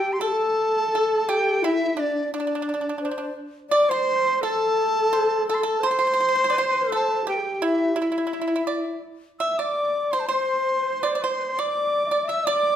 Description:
chinese traditional, Chinese chamber ensemble; 84 BPM; 4/4; rubato; A4 = 439 Hz
large dizi; melody; 0.0-12.8 s; D5 to E6; -25 LUFS; equal
dark horsehead fiddle; second line; 0.0-12.8 s; D4 to E5; -27 LUFS; right 2 dB
pipa; second line; 0.0-12.8 s; D4 to E5; -28 LUFS; right 4 dB
xiao; second line; 0.0-12.8 s; D4 to E5; -26 LUFS; left 6 dB
moderate recital hall reverb, RT60 1.3 s; -20 LUFS; side -10 dB against mid
0.0-12.8 A section

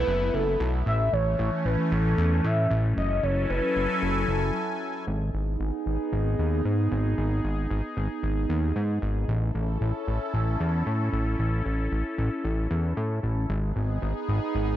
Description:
synthwave; 114 BPM; 4/4; straight; G# phrygian; A4 = 440 Hz
warm velvety synth lead; melody; 0.0-4.8 s; A4 to E5; -28 LUFS; equal; chorus, digital delay
phased analog pad; sustained chords; 0.0-14.8 s; E3 to G#5; -29 LUFS; right 1 dB; phaser, chorus
fat analog bass; bass; 0.0-14.8 s; F#1 to A2; -26 LUFS; equal
light reverb; -24 LUFS; side -12 dB against mid
0.0-5.1 A section; 5.1-14.8 B section
break 4.5-5.1
0.0 B7sus4; 0.9 A; 3.0 F#m7; 5.1 G#m; 9.3 A; 13.5 G#m

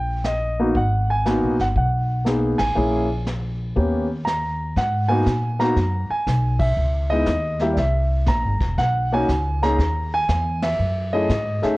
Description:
jazz piano trio; 120 BPM; 4/4; swing 66% on 8ths; G# minor; A4 = 440 Hz
warm concert grand piano; melody; 0.0-11.8 s; G3 to A#5; -21 LUFS; equal
upright bass; bass; 0.0-11.7 s; E1 to A#2; -22 LUFS; equal
vintage brush drum kit; drums; 0.2-11.8 s; brushed snare drum, crash cymbal, hi-hat, kick drum, ride cymbal, snare drum; -29 LUFS; equal
light reverb, small room ambience; worn, warbling old tape, cassette tape, warbly pitch drift; -19 LUFS; side -20 dB against mid
0.0-4.8 A section; 4.8-11.8 B section
band accent 2.5, 6.5, 10.5
0.0 D#; 0.8 G#m9; 2.8 A#m7b5; 3.8 D#7b13; 4.8 G#m9; 6.8 C#madd9; 7.8 C7; 8.8 Bmaj9; 10.8 F#m9

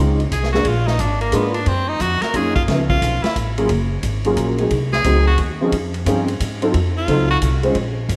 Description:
jazz, small-group swing and bop; 177 BPM; 3/4; swing 64% on 8ths; Bb minor; A4 = 438 Hz
warm upright piano; accompaniment; 0.0-7.8 s; F3 to E5; -23 LUFS; equal; ensemble chorus
upright bass; bass; 0.0-8.2 s; Gb1 to Ab2; -22 LUFS; equal
vintage drum kit; drums; 0.2-8.2 s; hi-hat, kick drum, ride cymbal, snare drum; -28 LUFS; equal
edgy tenor saxophone; second line; 0.3-7.4 s; Bb3 to Bb4; -24 LUFS; equal
moderate lush hall reverb, RT60 1.9 s, small room ambience; dreamy mix soaked in reverb; -18 LUFS; mono
0.0-7.8 A section
tenor saxophone solo 0.0-7.8
0.0 Bbm11; 0.7 Bb7b9; 1.7 Ebm9; 2.7 Db7alt; 3.7 Gbmaj9; 4.7 Ab7b9; 5.7 Dbmaj9; 6.7 F7b9

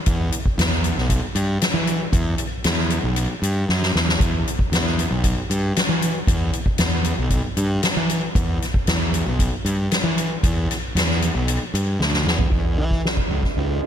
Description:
psychedelic rock; 116 BPM; 4/4; straight; A4 = 440 Hz
fuzz fingered electric bass; bass; 0.1-13.8 s; B1 to E3; -22 LUFS; equal; overdrive
soft-mallet drum kit; drums; 0.1-13.9 s; hi-hat, kick drum, ride cymbal, snare drum, toms; -21 LUFS; equal
light reverb; -18 LUFS; side -9 dB against mid
0.0-12.5 A section; 12.5-13.9 B section
drum fill 3.7-4.2, 12.0-12.5

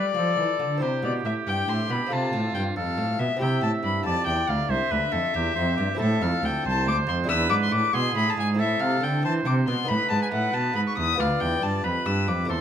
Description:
classical, baroque-style sonata movement with continuo; 92 BPM (dotted quarters); 12/8; straight; C major, A minor from 6.0 s; A4 = 440 Hz
dark violin; melody; 0.0-12.6 s; C5 to E6; -26 LUFS; left 6 dB
bright oboe; second line; 0.0-12.6 s; F4 to E5; -30 LUFS; right 7 dB
lute; accompaniment; 0.0-12.6 s; D2 to C5; -31 LUFS; equal
warm cello; bass; 0.0-12.6 s; C2 to G3; -26 LUFS; right 2 dB
light reverb; close, detailed microphones; -22 LUFS; side -9 dB against mid
0.0-12.6 A section
0.0 G7(no3); 0.8 C; 2.1 F; 3.4 C; 6.0 Am; 7.3 E7; 8.6 Am; 9.9 B7; 11.2 Bdim/D

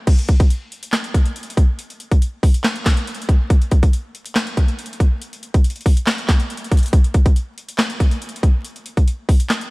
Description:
hip hop; 140 BPM; 4/4; half-time
trap drum kit; drums; 0.1-9.7 s; crash cymbal, handclaps, hi-hat, kick drum, snare drum; -15 LUFS; equal
light reverb; vinyl crackle; -16 LUFS; side -25 dB against mid
0.1-9.7 A section

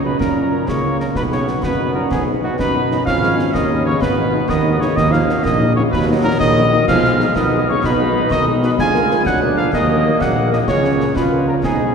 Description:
military-style march for wind band; 126 BPM (dotted quarters); 6/8; straight; Eb minor; A4 = 440 Hz
mellow cornet; melody; 0.0-11.9 s; F#4 to Ab5; -21 LUFS; equal
mellow hollow wooden piccolo; second line; 0.0-11.9 s; F#5 to Ab6; -24 LUFS; left 2 dB
warm euphonium; second line; 0.0-11.9 s; F#2 to Ab3; -22 LUFS; right 1 dB
warm trombone section; sustained chords; 0.0-11.9 s; Gb3 to F4; -23 LUFS; right 2 dB
mellow tuba; bass; 0.0-11.9 s; Ab1 to F#2; -19 LUFS; right 1 dB
mellow French horn section; accompaniment; 0.1-11.9 s; F3 to Bb4; -26 LUFS; left 4 dB
concert snare drum, concert bass drum and clash cymbals; drums; 0.2-11.8 s; -26 LUFS; left 1 dB
wet cathedral reverb, RT60 6.0 s; recorded in a church or concert hall; -14 LUFS; side -6 dB against mid
0.0-11.9 A section
0.0 Gb; 1.2 B; 3.1 Abm; 5.0 Ebm; 6.9 Abm/Cb; 8.8 Bb7/D; 9.7 Ebm; 10.7 Bbm/Db

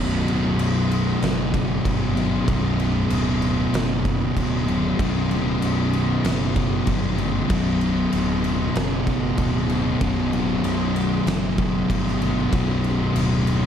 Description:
stoner and doom metal; 96 BPM; 4/4; straight; B minor; A4 = 439 Hz
thick fuzz guitar; riff; 0.0-13.7 s; B1 to B2; -24 LUFS; left 8 dB; distortion
thick fuzz guitar; riff; 0.0-13.7 s; B1 to B2; -24 LUFS; right 7 dB; distortion
fuzz picked electric bass; bass; 0.0-13.7 s; B0 to G1; -27 LUFS; equal; overdrive
oversized low-tuned drum kit; drums; 0.3-13.6 s; crash cymbal, kick drum, snare drum; -27 LUFS; equal
light reverb, studio reverb; dark, warm production; -19 LUFS; side -8 dB against mid
0.0-13.7 A section
0.0 Bm

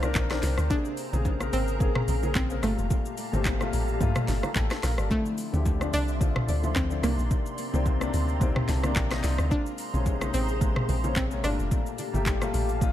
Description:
amapiano; 109 BPM; 4/4; swing 55% on 16ths; A4 = 440 Hz
analog pluck; melody; 0.0-12.5 s; A3 to D4; -33 LUFS; right 1 dB; chorus, tape echo
warm grand piano; accompaniment; 0.0-12.9 s; A2 to A5; -32 LUFS; left 6 dB
hollow soft pad; sustained chords; 0.0-12.9 s; F3 to C6; -36 LUFS; right 2 dB; ensemble chorus, sidechain pumping
deep log drum bass; bass; 0.0-12.9 s; F1 to G2; -28 LUFS; equal
afro-pop drum kit; drums; 0.0-12.9 s; handclaps, hi-hat, kick drum, rim click, shaker, snare drum, toms; -29 LUFS; equal
bongos and congas; percussion; 0.0-12.9 s; -35 LUFS; right 2 dB
digital ambience; lossy compression artefacts; -24 LUFS; side -12 dB against mid
0.0-12.9 A section
grand piano fill 4.3-5.1, 8.4-9.5
0.0 Cm9; 0.7 Bbm9; 2.6 Gm9; 5.1 Dm9; 7.0 Cm9; 9.5 Bbm9; 11.4 Gm9

